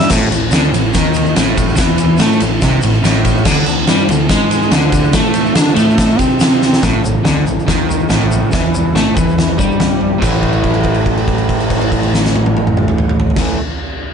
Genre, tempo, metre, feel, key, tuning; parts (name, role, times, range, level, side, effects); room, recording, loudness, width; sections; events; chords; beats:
garage rock duo or trio; 142 BPM; 4/4; straight; A4 = 440 Hz
crunchy overdriven guitar; riff; 0.0-13.6 s; A2 to D4; -14 LUFS; equal
growling fingered electric bass; bass; 0.0-13.5 s; A1 to D3; -20 LUFS; equal; overdrive
oversized low-tuned drum kit; drums; 0.0-13.5 s; crash cymbal, kick drum, ride cymbal, snare drum, toms; -14 LUFS; equal
tube shaker; percussion; 0.1-10.4 s; -30 LUFS; left 6 dB
light reverb; nothing above 10.4 kHz; -11 LUFS; side -7 dB against mid
0.1-6.8 A section; 6.8-10.2 B section; 10.2-13.6 C section
drum fill 6.6; held note 10.2-13.4
0.1 A5; 3.5 D5; 6.8 A5
| 0.10 0.52 0.94 1.36 | 1.78 2.20 2.62 3.04 | 3.46 3.88 4.30 4.72 | 5.14 5.56 5.98 6.40 | 6.82 7.25 7.67 8.09 | 8.52 8.94 9.36 9.79 | 10.21 10.64 11.06 11.49 | 11.92 12.34 12.77 13.20